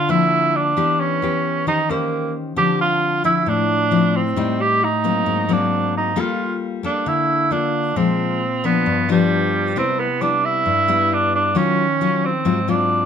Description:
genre	bossa nova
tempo	134 BPM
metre	4/4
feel	straight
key	unclear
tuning	A4 = 440 Hz
part	breathy tenor saxophone	melody	0.0-13.1 s	G3 to G4	-19 LUFS	right 4 dB	none
part	nylon-string guitar	accompaniment	0.0-13.1 s	G2 to C5	-20 LUFS	left 5 dB	none
room	light reverb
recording	none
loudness	-16 LUFS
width	side -8 dB against mid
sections	0.0-9.8 A section; 9.8-13.1 B section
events	none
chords	0.0 Gm7 (rootless); 0.8 Em7; 1.7 Eb6; 2.6 Dm9; 4.4 Am7b5; 5.3 Ab9; 6.2 Gm9; 8.0 Bb5; 8.9 G7; 9.8 Cmaj7; 11.6 Ebm9; 12.5 Ab6

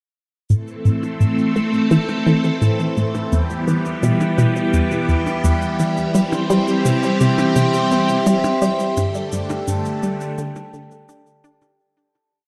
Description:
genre	ambient, sequencer-driven space music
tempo	85 BPM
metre	4/4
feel	straight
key	A minor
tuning	A4 = 440 Hz
part	phased string machine	sustained chords	0.5-11.8 s	D3 to A4	-23 LUFS	equal	ensemble chorus, phaser
part	vibraphone with soft mallets	arpeggios	0.5-11.8 s	G4 to C6	-27 LUFS	equal	tape echo
part	resonant blip pluck	riff	0.5-11.8 s	E2 to D4	-21 LUFS	equal	chorus, tape echo
part	cabasa and percussion blips	percussion	0.5-11.8 s	none	-34 LUFS	equal	tape echo
room	moderate plate reverb, RT60 2.3 s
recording	echo-heavy mix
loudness	-18 LUFS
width	mono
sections	0.5-11.8 A section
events	fade-in on vibraphone 0.5-11.8; fade-in on drum 0.5-11.8; filter sweep on synth arpeggio sound 0.5-11.8; fade-out 8.0-11.8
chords	0.5 Am; 3.3 Em; 6.1 C; 9.0 Gsus2

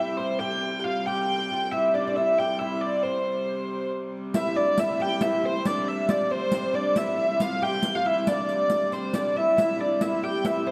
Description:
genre	medieval dance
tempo	92 BPM (dotted quarters)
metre	6/8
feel	straight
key	C major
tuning	A4 = 441 Hz
part	dark hurdy-gurdy	melody	0.0-10.7 s	C5 to G5	-27 LUFS	equal	none
part	oud	second line	0.0-10.7 s	C4 to G4	-33 LUFS	equal	none
part	warm hurdy-gurdy	drone	0.0-10.7 s	C3 to G3	-35 LUFS	equal	none
part	riq	percussion	4.3-10.6 s	none	-33 LUFS	equal	none
room	wet scoring stage reverb, RT60 2.0 s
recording	none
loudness	-25 LUFS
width	mono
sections	0.0-4.3 A section; 4.3-10.7 A section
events	none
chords	none

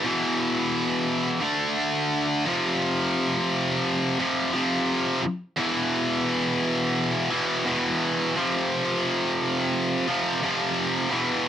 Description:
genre	metal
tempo	87 BPM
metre	4/4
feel	straight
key	unclear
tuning	A4 = 441 Hz
part	heavy high-gain guitar	solo	0.0-11.5 s	E2 to D4	-22 LUFS	equal	distortion, cassette tape
room	light reverb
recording	home recording on cassette, nothing above 10.5 kHz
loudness	-22 LUFS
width	side -10 dB against mid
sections	0.0-11.5 A section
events	none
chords	0.0 E5; 1.4 D5; 2.5 F5; 5.6 E5; 8.4 F5

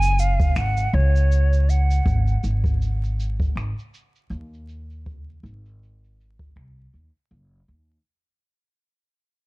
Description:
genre	folktronica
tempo	80 BPM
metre	4/4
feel	swing 56% on 16ths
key	unclear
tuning	A4 = 440 Hz
part	hollow jazz flute	melody	0.0-2.4 s	Db5 to Ab5	-26 LUFS	right 1 dB	vintage 12-bit sampler grit, ping-pong delay
part	upright bass	bass	0.0-8.0 s	Gb1 to Eb2	-20 LUFS	equal	tube saturation
part	shaker and finger snaps	drums	0.0-8.0 s	none	-38 LUFS	equal	low-pass filter on perc, low-pass filter on snare, low-pass filter on room
part	kick drum	drums	0.4-6.7 s	none	-23 LUFS	equal	none
room	studio ambience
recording	dark, warm production, vinyl crackle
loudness	-18 LUFS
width	side -21 dB against mid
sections	0.0-8.1 A section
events	fade-out 0.0-8.1; filter sweep on drum 0.0-8.1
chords	0.0 Gbsus2; 2.1 Ab5

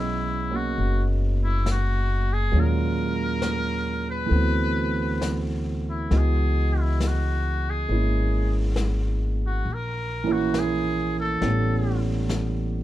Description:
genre	jazz ballad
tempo	68 BPM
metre	4/4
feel	swing 69% on 8ths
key	unclear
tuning	A4 = 442 Hz
part	trumpet with metal mute	melody	0.0-12.0 s	E4 to B4	-29 LUFS	left 2 dB	none
part	dark baby grand piano	accompaniment	0.0-12.8 s	A#2 to D#5	-27 LUFS	right 4 dB	none
part	upright bass	bass	0.0-12.8 s	F#1 to D#2	-24 LUFS	left 1 dB	none
part	vintage brush drum kit	drums	0.8-12.8 s	brushed snare drum, hi-hat, snare drum	-35 LUFS	left 3 dB	none
room	little or no reverb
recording	dark, warm production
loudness	-22 LUFS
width	side -14 dB against mid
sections	0.0-12.8 A section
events	none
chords	0.0 B69; 2.5 D#m11; 4.3 D13; 6.1 C#m11; 9.7 A#dim; 11.4 A9

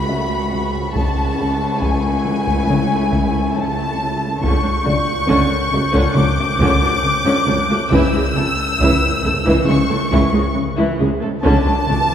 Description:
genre	cinematic, suspense film score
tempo	69 BPM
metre	4/4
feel	straight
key	unclear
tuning	A4 = 439 Hz
part	clear studio violin section	melody	0.0-12.1 s	G#5 to E6	-22 LUFS	left 2 dB	none
part	dark studio violin section	second line	0.0-12.1 s	G#5 to E6	-25 LUFS	left 2 dB	none
part	rich studio viola section	accompaniment	0.0-12.0 s	D3 to A4	-22 LUFS	right 1 dB	none
part	rich studio cello section	bass	0.0-12.0 s	C#2	-23 LUFS	right 1 dB	none
part	rich studio double bass section	bass	0.0-12.0 s	C#2	-24 LUFS	right 1 dB	none
part	metallic inharmonic drone	drone	0.0-12.1 s	C#2	-27 LUFS	equal	chorus, built-in reverb
part	dark baby grand piano	texture	0.0-7.9 s	D4 to E5	-28 LUFS	left 1 dB	none
part	rich studio violin section	texture	0.0-12.1 s	F#5 to A6	-32 LUFS	left 3 dB	none
part	rich studio cello section	riff	0.1-12.1 s	C#3	-23 LUFS	left 1 dB	none
part	solo taiko drums	drums	1.0-12.1 s	none	-22 LUFS	equal	none
part	riser	sound effects	11.8-12.1 s	none	-31 LUFS	equal	none
room	wet scoring stage reverb, RT60 2.0 s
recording	heard from further back in the room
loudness	-15 LUFS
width	side -9 dB against mid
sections	0.0-12.1 A section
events	none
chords	0.0 Amaj13/C#; 1.0 Amaj7/C#; 4.4 Dmaj7/C#; 7.9 Amaj7/C#; 11.4 Dmaj7/C#

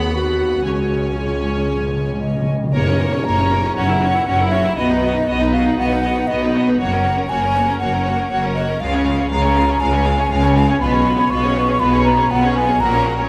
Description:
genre	classical, dramatic, fast romantic movement for symphony orchestra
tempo	119 BPM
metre	4/4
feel	straight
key	F# major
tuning	A4 = 442 Hz
part	rich symphonic violin section	melody	0.0-13.3 s	A#4 to B5	-31 LUFS	equal	none
part	clear symphonic violin section	second line	0.0-13.3 s	D#4 to F#5	-32 LUFS	equal	none
part	dark clarinet	second line	0.0-2.5 s	E#4 to G#4	-26 LUFS	equal	none
part	clear symphonic viola section	accompaniment	0.0-13.3 s	G#3 to E4	-27 LUFS	equal	none
part	mellow French horn section	sustained chords	0.0-2.5 s	G#3 to G#4	-29 LUFS	equal	none
part	clear symphonic double bass section	bass	0.0-13.2 s	F#1 to D#2	-25 LUFS	equal	none
part	rich symphonic cello section	bass	0.0-13.2 s	C#2 to C#3	-23 LUFS	equal	none
part	timpani	percussion	0.6-3.5 s	F#2 to C#3	-26 LUFS	equal	none
part	mellow hollow concert flute	second line	2.2-13.1 s	C#5 to C#6	-22 LUFS	equal	none
part	tam-tam	percussion	2.7-4.7 s	none	-31 LUFS	equal	none
room	wet recital hall reverb, RT60 1.9 s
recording	none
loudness	-17 LUFS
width	mono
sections	0.0-2.7 A section; 2.7-13.3 B section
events	timpani fill 0.7-2.7; band accent 2.7-3.2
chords	0.0 B/D#; 0.7 C#; 2.7 F#; 3.8 F#7; 4.8 B; 6.8 F#; 8.8 C#; 10.8 C#7/B

